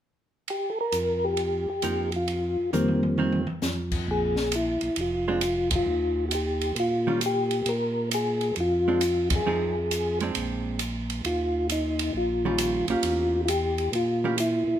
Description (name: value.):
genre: soul jazz organ trio.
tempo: 134 BPM.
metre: 4/4.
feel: swing 66% on 8ths.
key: unclear.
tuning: A4 = 441 Hz.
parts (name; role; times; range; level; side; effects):
percussive tonewheel organ; melody; 0.5-14.8 s; Eb3 to Bb4; -25 LUFS; left 1 dB; slow rotary speaker, chorus vibrato.
open jazz drum kit; drums; 0.5-14.5 s; crash cymbal, hi-hat, kick drum, ride cymbal, snare drum, toms; -32 LUFS; right 2 dB; none.
tonewheel organ; bass; 0.9-14.8 s; F1 to Bb2; -30 LUFS; equal; overdrive, chorus vibrato, stopped rotary speaker.
hollow-body jazz guitar; accompaniment; 1.8-14.4 s; Eb3 to Ab4; -30 LUFS; right 5 dB; none.
room: light reverb.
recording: minimal, uncompressed stereo recording.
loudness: -24 LUFS.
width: side -10 dB against mid.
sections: 0.5-4.1 A section; 4.1-14.8 B section.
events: drum fill 2.7-3.6; band accent 5.6, 9.2.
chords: 0.5 F9sus4; 2.3 F7sus4; 4.1 Bb7(no3); 5.9 Ebadd9; 7.7 Bb7(no3); 9.5 Fm7; 10.4 Bb9; 11.3 Eb9; 13.0 Edim7.